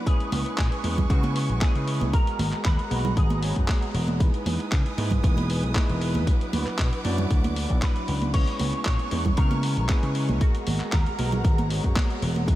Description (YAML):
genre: nu-disco, nu disco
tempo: 116 BPM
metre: 4/4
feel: straight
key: C# dorian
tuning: A4 = 440 Hz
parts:
  - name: electric guitar with an envelope filter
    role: melody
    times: 0.0-3.9, 7.8-12.2 s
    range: F#4 to C#5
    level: -34 LUFS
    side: equal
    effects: ensemble chorus, tape echo
  - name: bell-like tine electric piano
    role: accompaniment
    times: 0.0-12.6 s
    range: F#3 to D5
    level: -32 LUFS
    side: equal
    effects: wide subtle chorus, sidechain pumping, tape echo
  - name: warm symphonic string section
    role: sustained chords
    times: 0.0-12.6 s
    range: B3 to D#6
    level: -36 LUFS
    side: right 3 dB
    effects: sidechain pumping
  - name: dusty soul sampler-style drum kit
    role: drums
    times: 0.1-12.6 s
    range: crash cymbal, handclaps, hi-hat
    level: -34 LUFS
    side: left 1 dB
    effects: small room ambience
  - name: electronic kick drum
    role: drums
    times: 0.1-12.6 s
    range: none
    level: -22 LUFS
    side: equal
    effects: small room ambience
  - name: vintage slap bass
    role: bass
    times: 0.3-12.6 s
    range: E1 to C#3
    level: -26 LUFS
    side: equal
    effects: none
  - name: congas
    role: percussion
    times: 0.3-12.5 s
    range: none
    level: -33 LUFS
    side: right 4 dB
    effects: none
room: light reverb, digital ambience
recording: none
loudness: -22 LUFS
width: side -15 dB against mid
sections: 0.0-12.6 A section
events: none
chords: 0.1 C#m7; 2.1 G#m9; 4.2 Emaj7; 6.3 D69; 8.3 C#m7; 10.4 G#m9